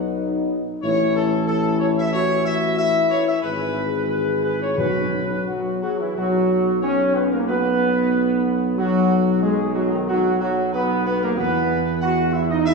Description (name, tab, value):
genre	classical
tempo	92 BPM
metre	4/4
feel	straight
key	B mixolydian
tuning	A4 = 440 Hz
part	mellow French horn section	sustained chords	0.0-12.7 s	D#4 to G#4	-27 LUFS	left 5 dB	none
part	warm trombone section	sustained chords	0.0-12.7 s	D#3 to F#4	-22 LUFS	equal	none
part	mellow tuba	bass	0.0-12.7 s	G#1 to E2	-24 LUFS	right 2 dB	none
part	mellow trumpet section	melody	0.8-12.7 s	D#4 to F#5	-24 LUFS	left 1 dB	none
part	timpani	percussion	4.8-5.8 s	B2	-30 LUFS	right 1 dB	none
room	wet scoring stage reverb, RT60 1.9 s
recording	heard from further back in the room, studio reverb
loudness	-18 LUFS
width	side -3 dB against mid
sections	0.0-6.2 A section; 6.2-12.7 B section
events	none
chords	0.0 B; 0.8 A5; 3.4 E/G#; 4.8 Bsus2; 6.2 B5; 11.4 E